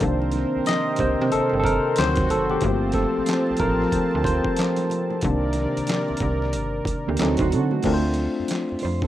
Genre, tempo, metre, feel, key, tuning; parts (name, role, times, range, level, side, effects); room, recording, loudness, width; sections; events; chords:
R&B, neo-soul; 92 BPM; 4/4; swing 62% on 16ths; G minor; A4 = 440 Hz
barky tine electric piano; accompaniment; 0.0-9.1 s; Eb3 to Eb5; -24 LUFS; left 2 dB; auto-pan
warm analog pad; sustained chords; 0.0-7.8 s; C3 to A5; -26 LUFS; right 2 dB; chorus
slap-like FM bass; bass; 0.0-9.1 s; F#1 to D3; -26 LUFS; right 1 dB
boom bap sampler-style drum kit; drums; 0.0-9.1 s; crash cymbal, handclaps, hi-hat, kick drum, snare drum; -28 LUFS; right 1 dB; overdrive
congas; percussion; 0.2-9.0 s; -38 LUFS; right 7 dB
mellow electric guitar; second line; 7.1-9.1 s; A3 to C5; -26 LUFS; right 7 dB
light reverb, digital ambience; rough home demo mix; -20 LUFS; side -13 dB against mid
0.0-7.8 A section; 7.8-9.1 B section
tine electric piano solo 0.0-7.8
0.0 Cm9; 2.0 D7b9; 2.6 Gm11; 5.2 Cm9; 7.2 D7b9; 7.8 Dm7